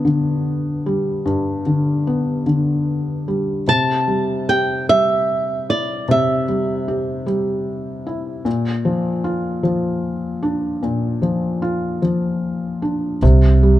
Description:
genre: acoustic folk-pop ballad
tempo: 50 BPM (dotted quarters)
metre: 6/8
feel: straight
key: C major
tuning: A4 = 440 Hz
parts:
  - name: felt-muted upright piano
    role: accompaniment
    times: 0.0-13.8 s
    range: G2 to G4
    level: -19 LUFS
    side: left 1 dB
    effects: none
  - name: flamenco guitar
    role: melody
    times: 3.7-7.2 s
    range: D5 to A5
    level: -17 LUFS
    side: right 2 dB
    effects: none
  - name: upright bass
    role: bass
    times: 13.2-13.8 s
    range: C2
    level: -10 LUFS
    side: right 1 dB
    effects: none
room: little or no reverb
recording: dark, warm production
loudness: -17 LUFS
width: side -14 dB against mid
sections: 0.0-13.2 A section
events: none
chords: 0.0 G; 3.7 C; 8.5 Bb; 13.2 C5

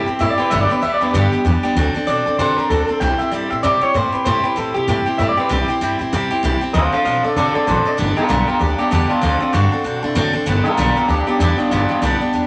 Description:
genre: rockabilly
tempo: 193 BPM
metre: 4/4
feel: swing 59% on 8ths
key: G major from 8.0 s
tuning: A4 = 443 Hz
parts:
  - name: electric guitar through a small old amp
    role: melody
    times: 0.0-12.5 s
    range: C4 to G5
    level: -21 LUFS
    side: equal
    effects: spring reverb
  - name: picked steel-string acoustic guitar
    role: accompaniment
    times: 0.0-12.5 s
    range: G2 to A4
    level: -22 LUFS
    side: equal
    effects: none
  - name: upright bass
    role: bass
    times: 0.0-12.5 s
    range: G1 to D3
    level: -23 LUFS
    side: equal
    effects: none
room: moderate club reverb, RT60 0.5 s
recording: none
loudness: -17 LUFS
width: mono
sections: 0.0-8.0 A section; 8.0-12.5 B section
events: none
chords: 0.0 C; 0.5 G; 1.8 D7; 3.0 C; 6.7 D7; 8.0 G; 9.2 D7; 10.5 G

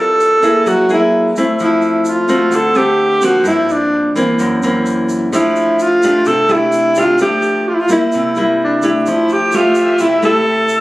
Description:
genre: bossa nova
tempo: 128 BPM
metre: 4/4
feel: straight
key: F major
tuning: A4 = 443 Hz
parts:
  - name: breathy alto saxophone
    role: melody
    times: 0.0-10.8 s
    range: D4 to A4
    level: -12 LUFS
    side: equal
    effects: none
  - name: nylon-string guitar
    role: accompaniment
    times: 0.0-10.8 s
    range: Gb2 to Ab4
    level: -16 LUFS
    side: equal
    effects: none
  - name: egg shaker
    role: percussion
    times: 0.2-10.8 s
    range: none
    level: -33 LUFS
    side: right 3 dB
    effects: none
  - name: muted studio string section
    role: sustained chords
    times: 9.1-10.8 s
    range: A3 to E5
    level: -23 LUFS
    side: left 1 dB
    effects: none
room: light reverb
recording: recorded on a phone in the room, club reverb, compression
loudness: -11 LUFS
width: side -18 dB against mid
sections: 0.0-9.1 A section; 9.1-10.8 B section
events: none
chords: 0.0 Gm11; 0.7 Gb9; 1.6 Fmaj7; 2.5 D7; 3.5 Gm7; 4.4 Gb7#11; 5.3 F69; 8.1 C7; 9.1 Fmaj9

